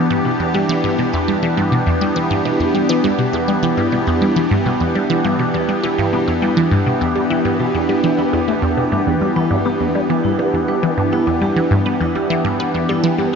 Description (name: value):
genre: ambient, sequencer-driven space music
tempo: 102 BPM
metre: 4/4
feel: straight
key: E minor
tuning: A4 = 441 Hz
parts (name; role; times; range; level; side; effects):
- evolving wavetable pad; sustained chords; 0.0-13.4 s; E3 to G4; -18 LUFS; left 1 dB; phaser, built-in reverb
- resonant blip pluck; riff; 0.0-13.3 s; E2 to B3; -18 LUFS; equal; phaser, tape echo
- vibraphone with medium mallets; arpeggios; 0.1-13.4 s; D4 to B4; -26 LUFS; right 3 dB; auto-pan, tape echo
room: wet huge ambient reverb, RT60 7.8 s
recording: dark, warm production, nothing above 7.5 kHz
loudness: -15 LUFS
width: side -6 dB against mid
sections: 0.0-13.4 A section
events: fade-in on vibraphone 0.0-13.4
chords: 0.0 Em7